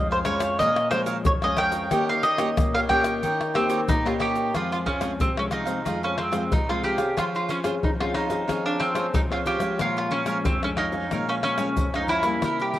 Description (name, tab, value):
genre	samba and choro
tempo	91 BPM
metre	4/4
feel	straight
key	unclear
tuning	A4 = 441 Hz
part	mandolin	melody	0.0-12.8 s	C4 to G5	-25 LUFS	equal	cassette tape, analog delay
part	nylon-string guitar	accompaniment	0.0-12.8 s	F2 to Ab4	-28 LUFS	left 4 dB	none
part	cavaquinho	accompaniment	0.1-12.8 s	Eb4 to Ab5	-30 LUFS	right 6 dB	none
part	egg shaker, pandeiro, tamborim and surdo	percussion	0.1-12.8 s	none	-28 LUFS	left 1 dB	none
room	moderate spring reverb, RT60 2.5 s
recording	home recording on cassette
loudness	-22 LUFS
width	side -13 dB against mid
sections	0.0-4.5 A section; 4.5-12.8 B section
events	none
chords	0.0 Bbm7; 1.9 Eb7; 4.5 Dbmaj7/F; 9.8 Bbm7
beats	0.60 1.26 | 1.91 2.57 3.23 3.88 | 4.54 5.20 5.85 6.51 | 7.17 7.83 8.48 9.14 | 9.80 10.46 11.11 11.77 | 12.43